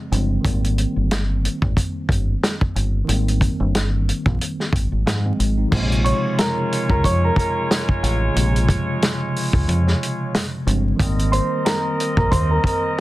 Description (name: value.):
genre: hip hop, boom-bap hip-hop.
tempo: 91 BPM.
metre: 4/4.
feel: swing 56% on 16ths.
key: Bb dorian.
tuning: A4 = 436 Hz.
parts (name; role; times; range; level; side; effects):
mellow tine electric piano; accompaniment; 0.0-13.0 s; C3 to Eb4; -25 LUFS; equal; medium stereo tremolo, cassette tape, high-pass filter, low-pass filter.
deep dub fingered electric bass; bass; 0.1-12.6 s; G1 to Ab2; -20 LUFS; equal; none.
warm soul drum kit; drums; 0.1-12.8 s; crash cymbal, hi-hat, kick drum, snare drum; -21 LUFS; equal; none.
warm horn section; stabs; 5.7-13.0 s; Ab3 to Eb5; -27 LUFS; right 1 dB; high-pass filter, low-pass filter, tape echo.
dark upright piano; melody; 6.0-13.0 s; Bb4 to Db6; -23 LUFS; equal; high-pass filter, low-pass filter, tape echo.
room: light reverb.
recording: dense, heavily limited modern master, vinyl crackle.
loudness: -17 LUFS.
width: side -17 dB against mid.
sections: 0.0-5.7 A section; 5.7-13.0 B section.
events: none.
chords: 0.4 Abmaj9; 5.7 Bbm9; 11.0 Abmaj9.